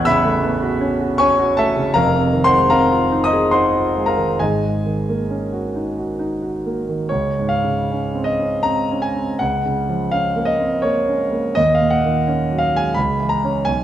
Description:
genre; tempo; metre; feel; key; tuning
classical, impressionist solo piano; 64-88 BPM; 3/4; rubato; Db major; A4 = 440 Hz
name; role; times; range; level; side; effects
warm concert grand piano; solo; 0.0-13.8 s; F1 to F#6; -16 LUFS; equal; none
room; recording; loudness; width
wet recital hall reverb, RT60 1.3 s; none; -16 LUFS; side -11 dB against mid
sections
0.0-7.1 A section; 7.1-13.8 B section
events
none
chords
0.0 A69; 1.9 Fm7; 4.4 Ab9sus4; 7.1 Dbmaj7; 9.4 Gbmaj7/Db; 11.6 Ebm7; 13.0 Dbm7

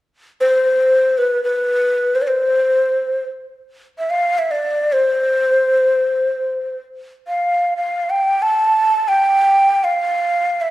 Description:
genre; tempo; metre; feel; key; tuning
persian; free time; none; none; C dastgah mahur; A4 = 439 Hz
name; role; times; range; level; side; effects
breathy mellow ney; melody; 0.4-10.7 s; B4 to A5; -14 LUFS; equal; none
room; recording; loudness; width
wet recital hall reverb, RT60 1.2 s; dark, warm production; -14 LUFS; side -16 dB against mid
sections
0.0-10.7 A section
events
none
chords
none

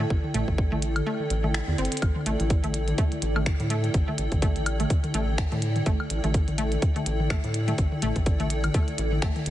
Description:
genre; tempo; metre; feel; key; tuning
minimal techno; 125 BPM; 4/4; swing 57% on 16ths; unclear; A4 = 439 Hz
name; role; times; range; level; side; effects
resonant blip pluck; riff; 0.0-9.3 s; A3 to C4; -33 LUFS; equal; chorus, sidechain pumping, tape echo
rubbery square bass; bass; 0.0-9.5 s; G1 to A2; -28 LUFS; equal; sidechain pumping
electronic toms and woodblock; percussion; 0.0-9.4 s; none; -32 LUFS; left 1 dB; overdrive
granular cloud pad; texture; 0.0-9.5 s; E4 to G5; -33 LUFS; equal; built-in reverb, sidechain pumping
electronic kick drum; drums; 0.1-9.3 s; none; -24 LUFS; equal; none
minimal click drum kit; drums; 0.3-9.5 s; finger snaps, hi-hat; -34 LUFS; equal; overdrive
room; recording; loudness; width
light reverb, digital ambience; heavily compressed radio sound, nothing above 10.5 kHz; -23 LUFS; side -13 dB against mid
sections
0.0-2.0 A section; 2.0-9.5 B section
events
kick drops out 1.1-2.0; drum fill 1.8; drop 2.0-9.5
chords
0.0 A7(no3)

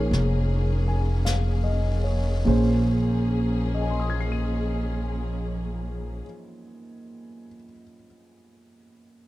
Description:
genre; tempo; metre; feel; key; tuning
jazz ballad; 47-56 BPM; 4/4; swing 68% on 8ths; Bb minor; A4 = 440 Hz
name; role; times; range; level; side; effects
warm concert grand piano; accompaniment; 0.0-9.3 s; Bb2 to Eb7; -29 LUFS; right 1 dB; none
warm symphonic string section; sustained chords; 0.0-6.2 s; F3 to Ab4; -31 LUFS; equal; none
upright bass; bass; 0.0-6.2 s; F1 to Bb1; -24 LUFS; equal; none
jazz brush drum kit; drums; 0.1-3.5 s; brushed snare drum, hi-hat, snare drum; -37 LUFS; left 1 dB; none
room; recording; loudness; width
little or no reverb; dark, warm production; -22 LUFS; side -17 dB against mid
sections
0.0-2.5 A section; 2.5-7.6 B section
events
slowing down 0.0-2.5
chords
0.0 Bbm9

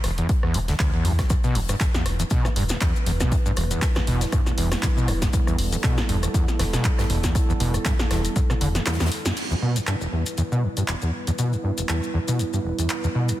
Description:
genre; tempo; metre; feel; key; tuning
acid house; 119 BPM; 4/4; swing 55% on 16ths; unclear; A4 = 439 Hz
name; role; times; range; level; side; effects
overdriven acid bass; riff; 0.0-13.3 s; E1 to D3; -25 LUFS; equal; distortion, tube saturation, analog chorus, sidechain pumping
round analog bass; bass; 0.0-8.8 s; E1 to E2; -25 LUFS; equal; sidechain pumping
huge arena drum kit; drums; 0.0-9.4 s; hi-hat, snare drum; -39 LUFS; left 3 dB; none
punchy analog drum machine; drums; 0.0-13.4 s; crash cymbal, handclaps, hi-hat, rim click, snare drum; -29 LUFS; equal; none
electronic kick drum; drums; 0.3-8.5 s; none; -23 LUFS; equal; none
dark analog pad; sustained chords; 1.3-13.4 s; G3 to B4; -31 LUFS; right 2 dB; lush chorus, sidechain pumping
maracas; percussion; 1.3-13.4 s; none; -35 LUFS; left 6 dB; none
room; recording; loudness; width
light reverb, studio ambience; dense, heavily limited modern master; -20 LUFS; side -14 dB against mid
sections
0.0-9.4 A section; 9.4-13.4 B section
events
drum fill 8.9-9.4; band accent 9.2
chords
0.0 Em

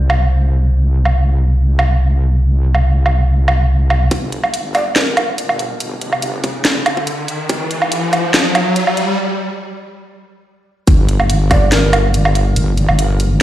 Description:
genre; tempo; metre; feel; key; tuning
deep dubstep; 142 BPM; 4/4; half-time; G minor; A4 = 443 Hz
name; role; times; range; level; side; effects
wobble bass; bass; 0.0-8.3, 10.9-13.4 s; F1 to C2; -14 LUFS; equal; chorus, high-pass filter
garage drum kit; drums; 0.1-13.3 s; hi-hat, snare drum, woodblock; -17 LUFS; right 1 dB; overdrive
electronic kick drum; drums; 4.1-7.6, 10.9-11.6 s; none; -13 LUFS; equal; overdrive, high-pass filter on kick
riser; sound effects; 5.3-9.2 s; none; -20 LUFS; left 1 dB; none
breathy mellow long shakuhachi; melody; 4.7-5.3, 11.5-12.0 s; Bb4 to D5; -25 LUFS; right 2 dB; dub echo
room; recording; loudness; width
light reverb, digital ambience; played on a big sound system in a bare room, stone room reverb; -12 LUFS; side -13 dB against mid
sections
0.0-4.1 A section; 4.1-10.9 B section; 10.9-13.4 C section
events
build-up 4.1-10.9; riser 5.3-9.2; break 9.2-10.9; drop 10.9-13.4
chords
0.0 N.C.; 10.9 G5

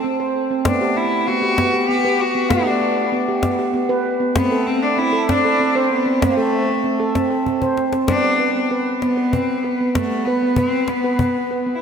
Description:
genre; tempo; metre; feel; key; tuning
world meditative, meditative tuned percussion; 64 BPM (dotted quarters); 6/8; straight; unclear; A4 = 442 Hz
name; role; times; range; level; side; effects
rich cello; melody; 0.0-11.8 s; A3 to G4; -20 LUFS; left 2 dB; ping-pong delay
handpan; arpeggios; 0.0-11.8 s; G3 to C5; -19 LUFS; right 2 dB; ping-pong delay
cajon; percussion; 0.7-11.3 s; none; -25 LUFS; left 3 dB; none
room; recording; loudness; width
wet lush hall reverb, RT60 2.5 s; dreamy mix soaked in reverb, faint mains hum; -16 LUFS; side -7 dB against mid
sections
0.0-8.1 A section; 8.1-11.8 B section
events
drum fill 7.5-8.1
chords
0.0 Am; 0.6 G/A; 4.4 Am; 8.1 G

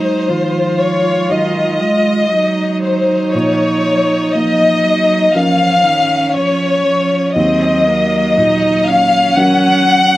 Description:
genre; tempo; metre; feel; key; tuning
neoclassical piano and strings; 59 BPM; 4/4; rubato; Bb minor; A4 = 445 Hz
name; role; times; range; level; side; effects
rich chamber violin section; melody; 0.0-10.2 s; C5 to Gb5; -13 LUFS; left 2 dB; slapback echo
rich cello; second line; 0.0-10.2 s; Eb3 to Ab3; -19 LUFS; right 3 dB; none
felt-muted upright piano; accompaniment; 0.0-10.2 s; Eb2 to Eb5; -21 LUFS; left 1 dB; slapback echo
rich viola; accompaniment; 0.0-10.2 s; Bb3 to F4; -19 LUFS; right 2 dB; slapback echo
room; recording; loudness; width
little or no reverb; recorded outdoors, with no room sound; -11 LUFS; side -16 dB against mid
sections
0.0-10.2 A section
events
none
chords
0.0 Ab7; 3.3 Bbm; 7.4 Ebm7

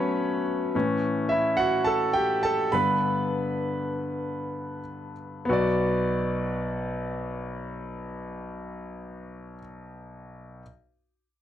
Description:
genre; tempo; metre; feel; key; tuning
pop; 91-108 BPM; 4/4; swing 56% on 16ths; B minor; A4 = 440 Hz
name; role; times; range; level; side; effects
bright concert grand piano; solo; 0.0-10.6 s; B1 to B5; -26 LUFS; equal; none
room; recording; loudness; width
moderate booth ambience, RT60 0.2 s; dry, close 1970s-style studio recording; -24 LUFS; side -10 dB against mid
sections
0.0-5.5 A section; 5.5-8.1 B section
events
grand piano solo 0.0-5.5; slowing down 0.7-5.5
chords
0.0 F#m; 0.7 A; 2.7 G; 5.5 Bm

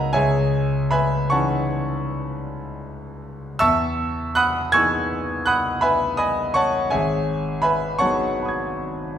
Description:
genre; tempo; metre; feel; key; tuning
classical, impressionist solo piano; 51-56 BPM (dotted quarters); 9/8; rubato; C# minor; A4 = 440 Hz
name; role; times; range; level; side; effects
clear concert grand piano; solo; 0.0-9.2 s; G#1 to G#6; -19 LUFS; equal; none
room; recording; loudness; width
moderate scoring stage reverb, RT60 1.6 s; recorded in a church or concert hall; -19 LUFS; side -9 dB against mid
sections
0.0-9.2 A section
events
none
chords
0.1 C#madd9; 3.6 Emaj7; 6.9 G#m7

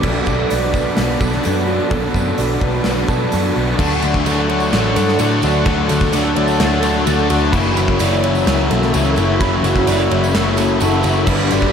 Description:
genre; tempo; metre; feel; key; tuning
rock, shoegaze and dream pop; 128 BPM; 4/4; straight; D major; A4 = 440 Hz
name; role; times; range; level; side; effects
sweeping resonant pad; sustained chords; 0.0-11.7 s; D4 to C#6; -23 LUFS; right 2 dB; chorus
direct-recorded clean electric guitar; arpeggios; 0.0-11.7 s; F#4 to B5; -24 LUFS; right 6 dB; wide subtle chorus, ping-pong delay
overdriven electric guitar; riff; 0.0-11.7 s; F#2 to F#4; -20 LUFS; left 7 dB; ensemble chorus
overdriven electric guitar; riff; 0.0-3.8, 11.3-11.7 s; G2 to D4; -23 LUFS; right 7 dB; reverse reverb
vintage muted picked electric bass; bass; 0.0-11.7 s; F#1 to B2; -20 LUFS; equal; none
gated 80s drum kit; drums; 0.0-11.7 s; crash cymbal, hi-hat, kick drum, ride cymbal, snare drum; -22 LUFS; right 1 dB; none
tambourine; percussion; 0.0-11.6 s; none; -35 LUFS; right 9 dB; none
distorted electric guitar; riff; 3.8-11.7 s; F#2 to D4; -21 LUFS; equal; overdrive
room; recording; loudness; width
wet lush hall reverb, RT60 1.8 s, small room ambience; dreamy mix soaked in reverb; -14 LUFS; side -7 dB against mid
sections
0.0-3.8 A section; 3.8-11.7 B section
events
none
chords
0.0 Bm7; 3.8 Dmaj7; 7.5 F#7sus4

